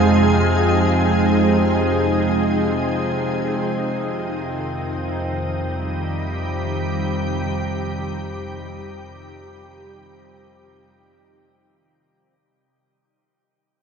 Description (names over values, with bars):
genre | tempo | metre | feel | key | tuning
ambient | free time | none | none | unclear | A4 = 440 Hz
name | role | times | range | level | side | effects
soft additive organ-like pad | sustained chords | 0.0-12.2 s | C3 to Ab4 | -20 LUFS | right 1 dB | ensemble chorus, built-in reverb
deep rumbling drone | bass | 0.0-12.2 s | F2 | -26 LUFS | equal | built-in reverb
pedal harmonium | drone | 0.0-12.3 s | F3 to C4 | -27 LUFS | left 2 dB | stereo widening
room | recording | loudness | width
wet shimmer reverb, RT60 8.1 s | dark, warm production | -18 LUFS | side -6 dB against mid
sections
0.0-12.2 A section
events
fade-out 0.4-12.2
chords
0.0 Fm7; 3.4 Cm/F